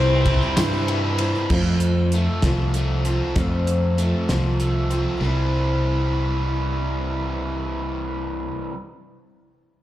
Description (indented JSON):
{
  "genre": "folk rock and heartland rock",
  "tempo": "65 BPM (dotted quarters)",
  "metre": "6/8",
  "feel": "straight",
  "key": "C major",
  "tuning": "A4 = 440 Hz",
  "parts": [
    { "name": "rich fiddle", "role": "melody", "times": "0.0-0.9 s", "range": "C4", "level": "-26 LUFS", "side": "left 1 dB", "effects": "none" },
    { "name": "bright grand piano", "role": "accompaniment", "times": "0.0-1.5 s", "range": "C4 to A5", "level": "-37 LUFS", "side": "equal", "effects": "none" },
    { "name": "picked steel-string acoustic guitar", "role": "accompaniment", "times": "0.0-8.8 s", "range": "C3 to C5", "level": "-29 LUFS", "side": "left 3 dB", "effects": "slapback echo" },
    { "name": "mellow tonewheel organ", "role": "sustained chords", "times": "0.0-1.5 s", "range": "G4 to G5", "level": "-38 LUFS", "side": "equal", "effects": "none" },
    { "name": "overdriven electric guitar", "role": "riff", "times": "0.0-8.7 s", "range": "F2 to E4", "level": "-26 LUFS", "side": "right 1 dB", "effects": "slapback echo" },
    { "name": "fingered electric bass", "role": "bass", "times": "0.0-8.5 s", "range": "C2 to G2", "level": "-22 LUFS", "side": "equal", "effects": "none" },
    { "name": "damped 70s drum kit", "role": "drums", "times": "0.3-5.0 s", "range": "crash cymbal, hi-hat, kick drum, ride cymbal, snare drum", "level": "-26 LUFS", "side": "equal", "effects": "none" },
    { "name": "tambourine", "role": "percussion", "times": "0.4-1.4 s", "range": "none", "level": "-42 LUFS", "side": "right 2 dB", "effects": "none" }
  ],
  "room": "small room reverb",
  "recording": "live gig heard through the venue's PA, club reverb",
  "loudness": "-20 LUFS",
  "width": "side -14 dB against mid",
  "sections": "0.0-1.5 A section; 1.5-5.2 B section; 5.2-8.9 C section",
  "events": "grand piano fill 0.6-1.5",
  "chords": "0.0 C; 1.5 F; 5.2 C"
}